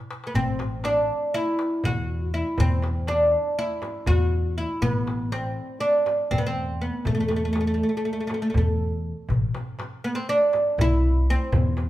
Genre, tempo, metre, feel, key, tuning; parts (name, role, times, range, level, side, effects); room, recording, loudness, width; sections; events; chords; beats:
Turkish makam ensemble; 242 BPM (eighths); 9/8; straight; A4 = 440 Hz
darbuka; percussion; 0.1-11.9 s; -31 LUFS; left 2 dB
oud; melody; 0.3-11.9 s; A3 to F#4-30c; -24 LUFS; equal
upright bass; bass; 0.3-11.9 s; A1 to E2; -25 LUFS; equal
frame drum; percussion; 0.3-11.9 s; -31 LUFS; equal
moderate large studio reverb, RT60 1.1 s; band playing live in one room; -22 LUFS; side -14 dB against mid
0.0-9.3 A section; 9.3-11.9 B section
drum fill 0.0-0.4
0.10 | 0.35 0.60 0.85 1.09 1.34 1.59 1.84 2.09 2.34 | 2.58 2.83 3.08 3.33 3.58 3.83 4.08 4.32 4.57 | 4.82 5.07 5.32 5.57 5.81 6.06 6.31 6.56 6.81 | 7.05 7.30 7.55 7.80 8.05 8.30 8.54 8.79 9.04 | 9.29 9.54 9.79 10.03 10.28 10.53 10.78 11.03 11.27 | 11.52 11.77